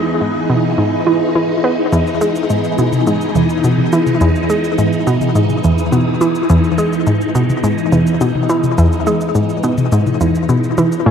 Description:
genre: ambient, sequencer-driven space music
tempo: 105 BPM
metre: 4/4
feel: straight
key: E major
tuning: A4 = 445 Hz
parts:
  - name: phased string machine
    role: sustained chords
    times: 0.0-11.1 s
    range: E3 to D#5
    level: -17 LUFS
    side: equal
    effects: ensemble chorus, phaser
  - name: analog pluck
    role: riff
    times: 0.0-11.1 s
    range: E2 to B3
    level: -14 LUFS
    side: equal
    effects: chorus, ping-pong delay
  - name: electronic cabasa and toms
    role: percussion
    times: 1.9-11.0 s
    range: none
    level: -22 LUFS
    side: left 4 dB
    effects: ping-pong delay
  - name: concert harp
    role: arpeggios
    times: 11.1 s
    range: G#4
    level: -21 LUFS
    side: equal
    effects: auto-pan
room: wet plate reverb, RT60 2.6 s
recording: dark, warm production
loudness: -12 LUFS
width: side -7 dB against mid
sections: 0.0-11.1 A section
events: none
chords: 0.0 Emaj7

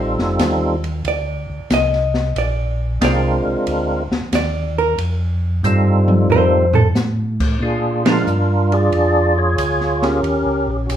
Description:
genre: soul jazz organ trio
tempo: 92 BPM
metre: 4/4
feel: swing 68% on 8ths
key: Bb mixolydian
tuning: A4 = 440 Hz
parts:
  - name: percussive tonewheel organ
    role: melody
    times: 0.0-11.0 s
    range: G3 to D5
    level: -18 LUFS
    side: right 1 dB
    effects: chorus vibrato, slow rotary speaker
  - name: mellow tonewheel organ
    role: bass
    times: 0.0-11.0 s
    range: F1 to Bb2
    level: -19 LUFS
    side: equal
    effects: chorus vibrato, slow rotary speaker
  - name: open jazz drum kit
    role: drums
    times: 0.2-11.0 s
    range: crash cymbal, hi-hat, kick drum, ride cymbal, snare drum, toms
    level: -22 LUFS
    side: equal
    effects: none
  - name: vintage hollow-body jazz guitar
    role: accompaniment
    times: 1.1-8.2 s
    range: F3 to Eb5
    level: -19 LUFS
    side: right 1 dB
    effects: none
room: moderate large studio reverb, RT60 0.9 s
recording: minimal, uncompressed stereo recording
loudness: -15 LUFS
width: side -10 dB against mid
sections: 0.0-7.6 A section; 7.6-11.0 B section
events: hollow-body jazz guitar solo 0.0-7.6; drum fill 5.6-7.0; band accent 7.9-8.3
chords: 0.0 F7; 2.4 Bb7; 5.0 F7; 7.6 Bb7; 10.2 Eb7

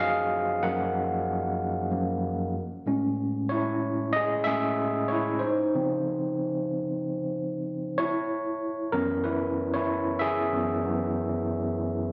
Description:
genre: R&B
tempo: 94 BPM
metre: 4/4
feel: swing 57% on 16ths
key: unclear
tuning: A4 = 440 Hz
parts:
  - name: overdriven tine electric piano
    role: solo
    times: 0.0-12.1 s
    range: Gb2 to Gb5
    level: -28 LUFS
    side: equal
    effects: fast tremolo
room: light reverb, digital ambience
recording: recorded on a phone in the room, studio reverb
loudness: -28 LUFS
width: mono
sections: 0.0-8.0 A section; 8.0-12.1 B section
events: tine electric piano solo 0.0-8.0, 8.0-12.1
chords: 0.0 Gbmaj9; 2.5 Amaj7; 5.4 Dbmaj9; 8.0 F#9sus4

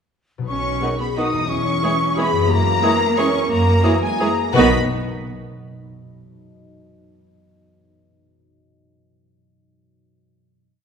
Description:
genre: classical, orchestral ballroom waltz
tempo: 177 BPM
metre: 3/4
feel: uneven beats, rubato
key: B major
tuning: A4 = 440 Hz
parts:
  - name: concert harp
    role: arpeggios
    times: 0.4-4.7 s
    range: E2 to D#5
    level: -26 LUFS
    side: left 2 dB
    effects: none
  - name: clear studio violin section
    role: melody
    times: 0.5-4.7 s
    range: G#5 to D#6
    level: -25 LUFS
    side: left 4 dB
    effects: none
  - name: concert flute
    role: second line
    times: 0.5-4.7 s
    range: D#5 to D#6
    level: -24 LUFS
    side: left 2 dB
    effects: none
  - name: dark French horn section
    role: sustained chords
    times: 0.5-4.7 s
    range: D#3 to A#4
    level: -25 LUFS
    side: left 3 dB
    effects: none
  - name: rich studio cello section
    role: bass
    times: 0.5-4.7 s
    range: G#3 to D#4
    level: -25 LUFS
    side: right 3 dB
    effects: none
  - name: rich studio double bass section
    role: bass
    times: 0.5-4.7 s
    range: B1 to F#2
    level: -24 LUFS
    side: right 1 dB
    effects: none
  - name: mellow cor anglais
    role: second line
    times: 0.8-4.7 s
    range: F#4 to G#4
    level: -29 LUFS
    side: right 2 dB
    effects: none
  - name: rich studio violin section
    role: second line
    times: 0.8-4.7 s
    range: F#4 to C#5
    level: -27 LUFS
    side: left 3 dB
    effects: none
  - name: rich studio viola section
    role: accompaniment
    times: 0.8-4.8 s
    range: G#3 to E4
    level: -24 LUFS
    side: right 3 dB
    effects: none
  - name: warm bassoon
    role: accompaniment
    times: 0.8-4.7 s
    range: D#3 to E3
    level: -28 LUFS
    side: right 2 dB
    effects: none
room: wet recital hall reverb, RT60 1.8 s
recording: recorded in a church or concert hall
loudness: -16 LUFS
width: side -6 dB against mid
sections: 0.5-4.6 A section; 4.6-5.6 final chord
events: none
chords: 0.5 B; 1.5 C#m/E; 2.5 F#9; 4.6 B

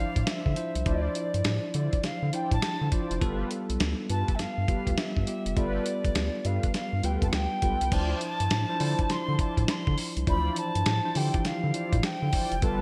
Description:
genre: R&B, new jack swing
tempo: 102 BPM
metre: 4/4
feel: swing 63% on 16ths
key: D dorian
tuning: A4 = 438 Hz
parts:
  - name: alto ocarina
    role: melody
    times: 0.0-12.8 s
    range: D5 to C6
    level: -35 LUFS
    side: equal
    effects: none
  - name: bell-like tine electric piano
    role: accompaniment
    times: 0.0-12.8 s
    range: E3 to C5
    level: -36 LUFS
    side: equal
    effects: none
  - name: mellow synth brass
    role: stabs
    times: 0.0-12.8 s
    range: E4 to D5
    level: -41 LUFS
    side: equal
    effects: chorus, digital delay
  - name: round analog bass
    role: bass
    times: 0.2-12.8 s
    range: F1 to D3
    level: -31 LUFS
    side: equal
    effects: none
  - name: dusty soul sampler-style drum kit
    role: drums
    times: 0.2-12.8 s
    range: crash cymbal, hi-hat, kick drum, snare drum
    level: -32 LUFS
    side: equal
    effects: gated reverb
  - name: warm analog pad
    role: sustained chords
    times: 12.6-12.8 s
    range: G3 to B4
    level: -34 LUFS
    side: equal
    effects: chorus, tremolo
room: moderate lush hall reverb, RT60 1.9 s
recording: bright 1980s-style digital production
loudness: -28 LUFS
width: mono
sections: 0.0-7.9 A section; 7.9-12.8 B section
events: none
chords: 0.0 Dm9; 3.2 G9; 7.9 Dm9

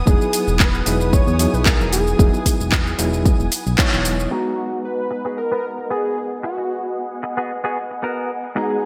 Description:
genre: nu-disco, nu disco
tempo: 113 BPM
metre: 4/4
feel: swing 54% on 16ths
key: G# minor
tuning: A4 = 440 Hz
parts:
  - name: muted studio string section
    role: sustained chords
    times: 0.0-8.9 s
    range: B3 to D#6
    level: -32 LUFS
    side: equal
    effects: sidechain pumping, low-pass filter
  - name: chorused synth bass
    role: bass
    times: 0.0-4.3 s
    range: E1 to E2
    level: -24 LUFS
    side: equal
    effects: sidechain pumping
  - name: unison lead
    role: melody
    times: 0.1-8.9 s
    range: F#4 to C#5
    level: -27 LUFS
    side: equal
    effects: digital delay
  - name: overdriven reed electric piano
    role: accompaniment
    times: 0.1-8.9 s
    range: F#3 to A#5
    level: -27 LUFS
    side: equal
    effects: harmonic tremolo, digital delay
  - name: electronic kick drum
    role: drums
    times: 0.1-3.9 s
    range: none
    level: -19 LUFS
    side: equal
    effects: small room ambience
  - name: house drum kit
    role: drums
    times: 0.1-4.3 s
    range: handclaps, hi-hat, shaker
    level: -24 LUFS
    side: equal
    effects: low-pass filter on perc, small room ambience, low-pass filter on hats, low-pass filter on snare, gated reverb
  - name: direct-recorded clean electric guitar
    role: riff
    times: 4.3-8.7 s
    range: B3 to B4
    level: -28 LUFS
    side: equal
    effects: lush chorus, low-pass filter, digital delay
room: moderate lush hall reverb, RT60 1.8 s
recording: bright 1980s-style digital production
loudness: -20 LUFS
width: mono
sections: 0.0-4.3 A section; 4.3-8.9 B section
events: band accent 3.8; filter sweep on clean electric guitar 4.3-8.9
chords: 0.0 Emaj7; 4.3 G#m7

